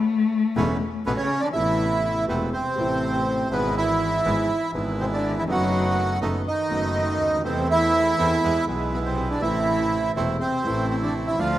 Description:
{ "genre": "tango", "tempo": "122 BPM", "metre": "4/4", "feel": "rubato", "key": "A harmonic minor", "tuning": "A4 = 440 Hz", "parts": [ { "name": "warm cello", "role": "second line", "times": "0.0-11.6 s", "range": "B2 to A3", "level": "-28 LUFS", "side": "left 4 dB", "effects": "none" }, { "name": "warm concert grand piano", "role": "accompaniment", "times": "0.6-11.6 s", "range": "E1 to A4", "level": "-29 LUFS", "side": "equal", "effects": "none" }, { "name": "bandoneon", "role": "stabs", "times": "0.6-11.6 s", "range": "F3 to F4", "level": "-31 LUFS", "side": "right 3 dB", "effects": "none" }, { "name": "clear double bass", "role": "bass", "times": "0.6-11.6 s", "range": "E1 to E2", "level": "-29 LUFS", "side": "equal", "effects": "none" }, { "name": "bandoneon", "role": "melody", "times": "1.1-11.6 s", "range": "B3 to F#5", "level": "-23 LUFS", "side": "right 2 dB", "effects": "none" } ], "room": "moderate lush hall reverb, RT60 2.4 s", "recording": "rough home demo mix", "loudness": "-21 LUFS", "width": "side -13 dB against mid", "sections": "0.0-1.6 A section; 1.6-11.6 B section", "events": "cello solo 0.0-1.6", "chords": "0.0 Aadd9; 1.6 Amadd9; 3.5 E/G#; 5.5 B7/F#; 7.4 Am/E; 8.4 E; 9.4 Am", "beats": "0.08 0.57 1.06 | 1.56 2.05 2.54 3.03 | 3.52 4.01 4.50 4.99 | 5.48 5.97 6.46 6.96 | 7.45 7.94 8.43 8.93 | 9.42 9.92 10.41 10.90 | 11.39" }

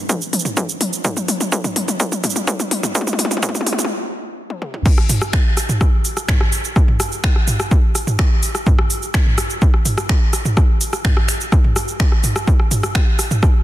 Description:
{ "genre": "techno", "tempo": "126 BPM", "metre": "4/4", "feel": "straight", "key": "none", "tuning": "none", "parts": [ { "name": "electronic kick drum", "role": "drums", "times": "0.1-13.5 s", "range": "none", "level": "-15 LUFS", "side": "equal", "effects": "high-pass filter on kick" }, { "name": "techno drum kit", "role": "drums", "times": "0.1-13.5 s", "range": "crash cymbal, finger snaps, hi-hat, rim click, shaker, toms", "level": "-19 LUFS", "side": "equal", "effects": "soft clipping on snare" } ], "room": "light reverb, digital ambience", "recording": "dense, heavily limited modern master, high-pass filter", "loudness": "-15 LUFS", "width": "side -14 dB against mid", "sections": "0.0-4.9 A section; 4.9-13.6 B section", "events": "build-up 0.0-4.9; drum fill 0.0-3.9, 4.5-4.9; stop 3.9-4.9; drop 4.9-13.6", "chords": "none", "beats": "0.09 0.57 | 1.05 1.52 2.00 2.48 | 2.95 3.43 3.90 4.38 | 4.86 5.33 5.81 6.28 | 6.76 7.24 7.71 8.19 | 8.66 9.14 9.62 10.09 | 10.57 11.05 11.52 12.00 | 12.47 12.95 13.43" }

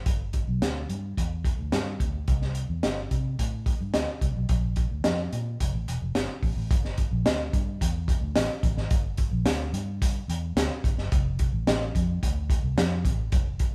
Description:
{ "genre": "uptempo 1960s-style soul", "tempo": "109 BPM", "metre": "4/4", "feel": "straight", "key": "unclear", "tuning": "A4 = 443 Hz", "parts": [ { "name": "vintage muted fingered electric bass", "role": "bass", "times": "0.1-13.7 s", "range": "E1 to C3", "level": "-32 LUFS", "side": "equal", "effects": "none" }, { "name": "crunchy breakbeat drum kit", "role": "drums", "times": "0.1-13.7 s", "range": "hi-hat, kick drum, snare drum", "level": "-28 LUFS", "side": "equal", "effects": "none" } ], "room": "wet stone room reverb, RT60 1.0 s", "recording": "band playing live in one room", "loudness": "-27 LUFS", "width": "mono", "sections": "0.0-6.7 A section; 6.7-13.7 B section", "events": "none", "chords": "none", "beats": "| 0.06 0.62 1.17 1.73 | 2.28 2.83 3.39 3.94 | 4.50 5.05 5.60 6.16 | 6.71 7.26 7.81 8.37 | 8.92 9.47 10.02 10.57 | 11.12 11.67 12.22 12.77 | 13.32" }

